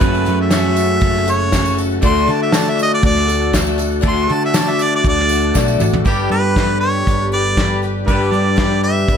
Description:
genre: folk rock and heartland rock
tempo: 119 BPM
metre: 4/4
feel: straight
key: unclear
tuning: A4 = 438 Hz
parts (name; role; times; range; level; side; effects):
- warm harmonica; melody; 0.0-9.2 s; G4 to C6; -19 LUFS; right 1 dB; none
- picked twelve-string acoustic guitar; accompaniment; 0.0-9.2 s; D3 to B4; -22 LUFS; left 7 dB; none
- tonewheel organ; sustained chords; 0.0-9.2 s; C#4 to B4; -32 LUFS; equal; none
- electric guitar through a small old amp; riff; 0.0-9.2 s; F#2 to G4; -20 LUFS; equal; lush chorus
- hollow-body short-scale picked electric bass; bass; 0.0-9.2 s; F#1 to D3; -20 LUFS; right 1 dB; none
- soft brush drum kit; drums; 0.0-9.2 s; hi-hat, kick drum, snare drum, toms; -18 LUFS; equal; none
- tambourine; percussion; 0.0-5.9 s; none; -32 LUFS; right 7 dB; none
room: light reverb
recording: none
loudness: -13 LUFS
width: side -7 dB against mid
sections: 0.0-6.1 A section; 6.1-9.2 B section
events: harmonica solo 0.0-6.1; drum fill 5.6-6.1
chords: 0.0 F#m; 2.0 D; 6.1 G

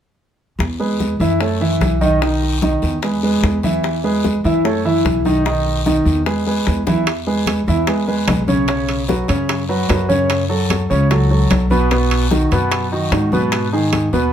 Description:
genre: latin, Cuban son and guajira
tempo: 148 BPM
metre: 4/4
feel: straight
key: E major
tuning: A4 = 440 Hz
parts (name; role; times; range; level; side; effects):
- upright bass; bass; 0.6-14.3 s; B1 to G#2; -20 LUFS; equal; none
- bongos; percussion; 0.6-14.1 s; none; -26 LUFS; left 6 dB; none
- congas; percussion; 0.6-14.3 s; none; -23 LUFS; left 2 dB; none
- guiro; percussion; 0.6-14.3 s; none; -31 LUFS; left 5 dB; none
- warm concert grand piano; arpeggios; 0.8-14.3 s; B2 to E5; -17 LUFS; right 1 dB; slapback echo
- timbales; percussion; 7.1-14.1 s; none; -25 LUFS; right 5 dB; none
room: moderate studio reverb, RT60 0.6 s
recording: heard from further back in the room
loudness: -14 LUFS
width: side -9 dB against mid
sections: 0.6-7.1 A section; 7.1-14.3 B section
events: drum fill 6.9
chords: 0.6 E; 1.4 F#m7; 2.2 B; 3.0 E; 4.6 F#m7; 5.5 B; 6.3 E; 8.7 Bsus2; 10.3 F#m; 11.9 B; 13.5 G#m

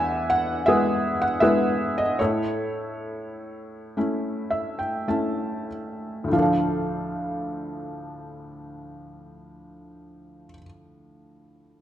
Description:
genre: classical, lyrical solo piano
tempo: 47-84 BPM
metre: 4/4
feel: rubato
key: D minor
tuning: A4 = 439 Hz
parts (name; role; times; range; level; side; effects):
- felt-muted upright piano; solo; 0.0-11.8 s; D2 to A5; -23 LUFS; equal; none
room: moderate scoring stage reverb, RT60 1.6 s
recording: dark, warm production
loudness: -22 LUFS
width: side -11 dB against mid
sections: 0.0-6.3 A section; 6.3-11.2 B section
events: slowing down 0.0-6.3; felt piano fill 4.0-6.3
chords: 0.0 E; 2.2 A; 6.3 Dm

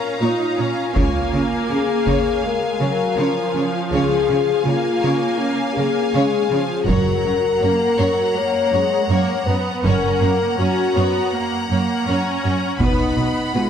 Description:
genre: cinematic, epic orchestral film score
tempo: 81 BPM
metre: 4/4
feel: straight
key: unclear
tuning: A4 = 441 Hz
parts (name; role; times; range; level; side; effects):
- rich studio violin section; melody; 0.0-13.7 s; Ab5 to B5; -30 LUFS; left 2 dB; none
- warm symphonic violin section; second line; 0.0-13.7 s; B4 to Gb5; -26 LUFS; left 2 dB; none
- warm symphonic viola section; accompaniment; 0.0-13.7 s; F3 to Eb4; -25 LUFS; right 2 dB; none
- mellow French horn section; sustained chords; 0.0-13.7 s; Db4 to Db5; -20 LUFS; left 4 dB; none
- rich symphonic cello section; bass; 0.2-13.6 s; Gb2 to Db3; -23 LUFS; right 3 dB; none
- warm symphonic double bass section; bass; 1.0-13.2 s; Gb1 to Db2; -25 LUFS; right 4 dB; none
- taiko ensemble; drums; 1.0-2.4, 6.9-8.3, 12.8-13.7 s; none; -24 LUFS; equal; none
room: wet concert hall reverb, RT60 2.4 s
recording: none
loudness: -16 LUFS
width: side -8 dB against mid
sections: 0.0-13.7 A section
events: none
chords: 0.0 Bbm; 1.0 Db; 6.9 Gb; 12.8 B

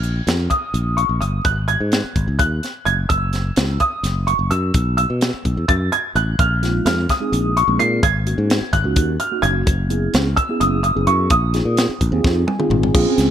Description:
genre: electric jazz fusion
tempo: 256 BPM (eighths)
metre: 7/8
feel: straight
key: Bb minor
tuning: A4 = 439 Hz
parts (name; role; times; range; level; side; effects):
- warm grand piano; melody; 0.0-12.4 s; Db6 to C7; -21 LUFS; right 1 dB; wide subtle chorus
- modern bright fingered electric bass; bass; 0.0-13.3 s; Gb1 to B2; -19 LUFS; equal; none
- tight funk drum kit; drums; 0.0-13.3 s; crash cymbal, hi-hat, kick drum, snare drum, toms; -20 LUFS; equal; none
- mellow tine electric piano; accompaniment; 6.6-13.3 s; Ab3 to Ab5; -22 LUFS; right 2 dB; phaser
room: light reverb, small room ambience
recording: bright 1980s-style digital production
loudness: -16 LUFS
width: side -10 dB against mid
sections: 0.0-12.9 A section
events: drum fill 12.2-12.9; tine electric piano fill 12.2-12.9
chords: 0.0 Bbsus4; 1.4 Ab7(no3); 3.1 Gb5; 4.7 B7sus4; 6.4 Bb9sus4; 8.0 Ab9sus4; 9.7 Gb9sus4; 11.3 Bb9sus4

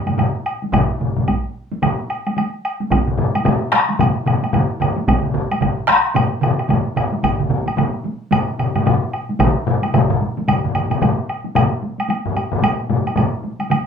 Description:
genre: japanese traditional, taiko drum ensemble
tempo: 111 BPM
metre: 4/4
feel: swing 60% on 16ths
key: none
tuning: none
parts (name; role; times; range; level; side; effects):
- taiko ensemble; percussion; 0.1-13.8 s; none; -22 LUFS; equal; none
- taiko ensemble; percussion; 0.1-13.3 s; none; -18 LUFS; left 2 dB; none
- taiko ensemble; percussion; 0.1-13.8 s; none; -23 LUFS; right 5 dB; none
- woodblock; percussion; 0.1-13.9 s; none; -23 LUFS; equal; none
- taiko ensemble; percussion; 0.7-10.1 s; none; -23 LUFS; right 2 dB; none
room: wet studio ambience, RT60 0.5 s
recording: band playing live in one room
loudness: -16 LUFS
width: side -7 dB against mid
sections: 0.0-11.6 A section; 11.6-13.9 B section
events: none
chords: none

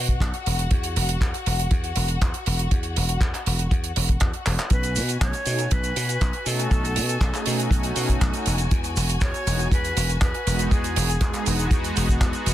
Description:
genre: nu-disco, nu disco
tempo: 120 BPM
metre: 4/4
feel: straight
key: E major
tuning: A4 = 440 Hz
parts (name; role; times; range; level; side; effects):
- warm studio string section; sustained chords; 0.0-12.5 s; F#4 to G#5; -33 LUFS; left 5 dB; sidechain pumping
- dry thumbed slap bass; bass; 0.0-12.5 s; E1 to B2; -25 LUFS; equal; none
- damped 70s drum kit; drums; 0.1-12.5 s; handclaps, hi-hat, shaker; -28 LUFS; right 3 dB; none
- kick drum; drums; 0.1-12.3 s; none; -22 LUFS; equal; none
- bright silver concert flute; melody; 4.7-11.7 s; G#4 to C#5; -30 LUFS; equal; tape echo
- warm analog pad; accompaniment; 4.7-12.5 s; G#3 to G#4; -30 LUFS; equal; chorus, tremolo, cassette tape, sidechain pumping, tape echo
room: small room ambience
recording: dense, heavily limited modern master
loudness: -20 LUFS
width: side -13 dB against mid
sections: 0.0-12.5 A section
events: drum fill 4.5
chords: 0.5 Esus2; 4.7 B7; 8.5 Emaj7

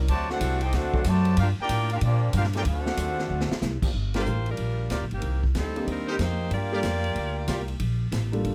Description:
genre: jazz, big band swing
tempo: 186 BPM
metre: 4/4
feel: swing 64% on 8ths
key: G minor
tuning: A4 = 440 Hz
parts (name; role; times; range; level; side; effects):
- clear trombone section; sustained chords; 0.0-3.9 s; F3 to A4; -39 LUFS; equal; none
- upright bass; bass; 0.0-8.5 s; G1 to Bb2; -28 LUFS; equal; none
- warm trumpet section; melody; 0.1-3.6 s; Bb3 to A5; -33 LUFS; equal; none
- bright trombone section; second line; 0.1-3.6 s; C3 to G4; -35 LUFS; equal; none
- swinging big-band drum kit; drums; 0.1-8.5 s; crash cymbal, hi-hat, kick drum, ride cymbal, snare drum; -35 LUFS; equal; none
- clear trumpet section; stabs; 4.1-7.6 s; Eb4 to D5; -35 LUFS; equal; none
- edgy saxophone section; melody; 4.2-7.8 s; Eb3 to D5; -34 LUFS; equal; none
- clear concert grand piano; accompaniment; 4.2-8.5 s; G3 to A4; -32 LUFS; equal; none
room: little or no reverb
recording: close, detailed microphones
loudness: -26 LUFS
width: mono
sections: 0.0-3.9 A section; 3.9-8.5 B section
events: drum fill 3.3-3.6; band accent 4.1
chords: 0.1 D7; 1.4 Gm7; 2.7 D7; 3.9 Gm7; 5.2 Cm7; 6.5 Gm7

